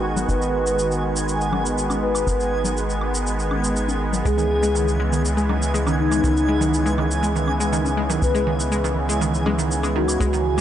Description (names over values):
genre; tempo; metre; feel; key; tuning
progressive house; 121 BPM; 4/4; straight; unclear; A4 = 440 Hz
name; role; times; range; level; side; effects
filtered supersaw swell; sustained chords; 0.0-10.6 s; C#3 to F#4; -24 LUFS; right 1 dB; none
tight sequencer bass; bass; 0.0-10.6 s; G#1 to C#2; -24 LUFS; equal; none
backwards swelling texture; texture; 0.0-10.6 s; G#5; -31 LUFS; equal; built-in reverb
shaker; drums; 0.2-10.6 s; none; -31 LUFS; right 1 dB; overdrive, studio reverb
congas and woodblock; percussion; 0.2-10.6 s; none; -29 LUFS; left 4 dB; studio reverb
soft octave-layered synth lead; melody; 0.3-10.6 s; D#4 to B4; -25 LUFS; left 1 dB; chorus, phaser, dub echo
analog pluck; arpeggios; 4.3-10.6 s; D#3 to G#3; -24 LUFS; right 1 dB; chorus, dub echo
room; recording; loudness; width
light reverb, digital ambience; nothing above 10.4 kHz; -19 LUFS; side -10 dB against mid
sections
0.0-10.6 A section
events
none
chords
0.0 G#m7; 4.3 C#m7